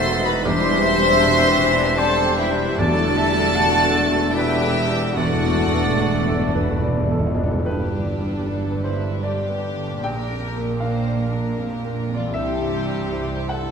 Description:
cinematic, emotional film score for orchestra; 71-79 BPM; 3/4; rubato; A4 = 440 Hz
clear studio violin section; melody; 0.0-13.7 s; F4 to C6; -27 LUFS; equal
silver concert flute; second line; 0.0-6.8 s; G4 to E5; -24 LUFS; left 1 dB
warm clarinet; second line; 0.0-7.3 s; G4 to F#5; -28 LUFS; left 1 dB
warm studio violin section; second line; 0.0-13.7 s; D4 to C5; -26 LUFS; left 2 dB
warm baby grand piano; accompaniment; 0.0-13.7 s; Bb1 to G5; -27 LUFS; equal
warm studio viola section; accompaniment; 0.0-13.7 s; D#3 to F#4; -29 LUFS; right 4 dB
warm French horn section; sustained chords; 0.0-7.3 s; F#3 to F#4; -27 LUFS; left 4 dB
concert harp; arpeggios; 0.0-13.7 s; G2 to B5; -29 LUFS; left 7 dB
rich studio double bass section; bass; 0.0-13.7 s; E1 to C2; -27 LUFS; right 4 dB
warm chamber cello section; bass; 0.0-13.7 s; E2 to C3; -30 LUFS; right 4 dB
timpani; percussion; 0.5-7.7 s; E2; -27 LUFS; right 1 dB
wet recital hall reverb, RT60 1.2 s; -18 LUFS; side -6 dB against mid
0.0-7.7 A section; 7.7-13.7 B section
timpani fill 5.2-7.7
0.5 Cadd9/E; 2.8 D/E; 5.2 Bm7/E; 7.7 G; 10.0 Bb; 12.3 C
| 0.45 1.22 1.98 | 2.79 3.57 4.35 | 5.17 6.01 6.84 | 7.66 8.45 9.23 | 10.04 10.82 11.58 | 12.34 13.10

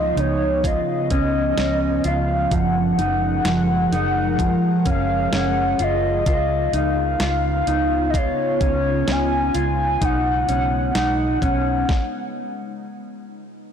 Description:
dream pop; 64 BPM; 4/4; straight; Db mixolydian; A4 = 437 Hz
warbly nostalgic lead; melody; 0.0-12.8 s; Db5 to Ab5; -23 LUFS; left 1 dB; chorus, tape echo
ethereal airy pad; sustained chords; 0.0-11.9 s; Db3 to Bb4; -28 LUFS; right 1 dB; ensemble chorus, built-in reverb
mellow electric guitar; arpeggios; 0.0-11.9 s; F3 to F4; -23 LUFS; left 1 dB; lush chorus, tape echo
vintage muted fingered electric bass; bass; 0.0-11.8 s; Gb1 to Db2; -24 LUFS; equal; transformer saturation
clean 12-bit digital drum machine; drums; 0.2-12.1 s; hi-hat, kick drum, snare drum; -24 LUFS; equal
moderate concert hall reverb, RT60 2.2 s; blown-out, overdriven recording, overdrive; -18 LUFS; side -8 dB against mid
0.0-13.7 A section
stop 11.9-13.7
0.0 Db9; 2.5 Gbmaj9; 6.3 Db9; 10.0 Cb69
0.64 1.58 | 2.51 3.45 4.39 5.33 | 6.26 7.20 8.14 9.08 | 10.01 10.95 11.89 12.83

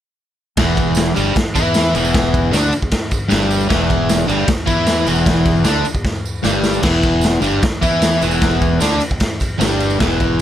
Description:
garage rock duo or trio; 153 BPM; 4/4; straight; E minor; A4 = 440 Hz
crunchy overdriven guitar; riff; 0.6-10.4 s; E2 to E4; -16 LUFS; equal
growling fingered electric bass; bass; 0.6-10.4 s; E1 to E2; -21 LUFS; equal; overdrive
raw garage drum kit; drums; 0.6-10.3 s; crash cymbal, kick drum, ride cymbal, snare drum; -18 LUFS; equal
tambourine; percussion; 0.8-10.4 s; -31 LUFS; right 8 dB
light reverb; -14 LUFS; side -11 dB against mid
0.6-10.4 A section
drum fill 6.1-6.8
0.6 Em
| 0.56 0.95 1.34 1.74 | 2.13 2.52 2.91 3.31 | 3.70 4.09 4.48 4.88 | 5.27 5.66 6.05 6.45 | 6.84 7.24 7.63 8.02 | 8.42 8.81 9.21 9.60 | 10.00 10.39

